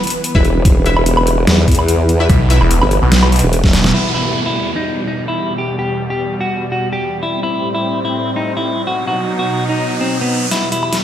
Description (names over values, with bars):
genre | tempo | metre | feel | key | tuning
heavy wobble dubstep | 146 BPM | 4/4 | half-time | E harmonic minor from 3.9 s | A4 = 440 Hz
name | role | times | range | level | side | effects
supersaw pad | sustained chords | 0.0-11.0 s | E2 to B4 | -21 LUFS | right 1 dB | sidechain pumping, low-pass filter
dubstep drum kit | drums | 0.0-4.0, 10.5-11.0 s | crash cymbal, hi-hat, snare drum, woodblock | -17 LUFS | equal | overdrive, high-pass filter on perc, low-pass filter on perc, studio reverb, high-pass filter on hats, low-pass filter on hats, high-pass filter on snare, low-pass filter on snare, high-pass filter on cymbals, low-pass filter on cymbals
orchestra-hit-like synth stab | stabs | 0.3-2.6 s | E4 to E5 | -21 LUFS | left 4 dB | built-in reverb, ping-pong delay
formant-sweep wobble bass | bass | 0.3-3.7 s | E1 to E2 | -13 LUFS | equal | chorus, overdrive
electronic kick drum | drums | 0.3-3.7 s | none | -12 LUFS | equal | overdrive, studio reverb
snarling distorted saw bass | bass | 2.3-3.9 s | E1 to B1 | -12 LUFS | equal | distortion, overdrive
clean electric guitar | melody | 3.9-11.0 s | B3 to G4 | -19 LUFS | left 1 dB | vintage 12-bit sampler grit, ping-pong delay
downlifter and riser | sound effects | 3.9-11.0 s | none | -24 LUFS | right 1 dB | none
room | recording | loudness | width
light reverb | played on a big sound system in a bare room, stone room reverb | -13 LUFS | side -10 dB against mid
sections
0.0-3.9 A section; 3.9-10.5 B section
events
drop 0.0-3.9; drum fill 3.6-3.9, 10.5-11.0; band accent 3.8; filter sweep on supersaw synth 3.9-10.5; riser 8.3-10.5, 10.5-11.0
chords
0.0 E5; 3.9 Em; 7.2 Am7; 8.9 B; 10.5 Em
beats
0.24 | 0.65 1.06 1.47 1.88 | 2.29 2.71 3.12 3.53 | 3.94 4.35 4.76 5.17 | 5.58 5.99 6.41 6.82 | 7.23 7.64 8.05 8.46 | 8.87 9.28 9.69 10.10 | 10.52 10.93